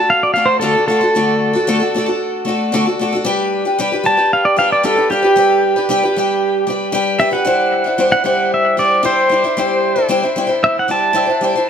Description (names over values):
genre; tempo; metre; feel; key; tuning
rock; 114 BPM; 4/4; straight; unclear; A4 = 441 Hz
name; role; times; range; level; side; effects
pedal steel guitar; melody; 0.0-11.7 s; G4 to A5; -14 LUFS; right 1 dB; digital delay
picked twelve-string acoustic guitar; accompaniment; 0.0-11.7 s; D3 to C5; -16 LUFS; left 2 dB; none
room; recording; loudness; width
moderate echo chamber reverb, RT60 1.4 s; dark, warm production; -13 LUFS; side -8 dB against mid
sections
0.0-11.7 A section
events
pedal steel guitar solo 0.0-11.7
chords
0.0 D; 3.3 G; 7.5 Cadd9/G